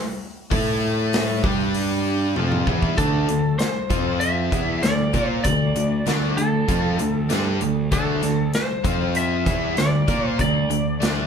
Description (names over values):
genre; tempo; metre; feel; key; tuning
hard rock; 97 BPM; 4/4; straight; D minor; A4 = 440 Hz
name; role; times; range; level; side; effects
cranked stack guitar; riff; 0.5-11.3 s; D3 to Bb4; -26 LUFS; left 9 dB; overdrive
cranked stack guitar; riff; 0.5-11.3 s; D3 to Bb4; -27 LUFS; right 8 dB; overdrive, spring reverb
fuzz picked electric bass; bass; 0.5-11.3 s; D2 to Bb2; -24 LUFS; equal; overdrive
big rock drum kit; drums; 0.5-11.2 s; hi-hat, kick drum, snare drum, toms; -25 LUFS; equal; none
lightly driven lead guitar; melody; 3.0-11.3 s; A4 to E5; -25 LUFS; right 1 dB; none
room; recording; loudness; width
moderate large studio reverb, RT60 1.1 s; band playing live in one room, lossy compression artefacts; -19 LUFS; side -7 dB against mid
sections
0.0-3.0 A section; 3.0-11.3 B section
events
drum fill 2.4-3.0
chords
0.0 N.C.; 0.5 A5; 1.4 G5; 2.4 Cadd11; 3.0 D5; 3.9 F5; 4.5 Dm; 8.9 F5; 9.5 Dm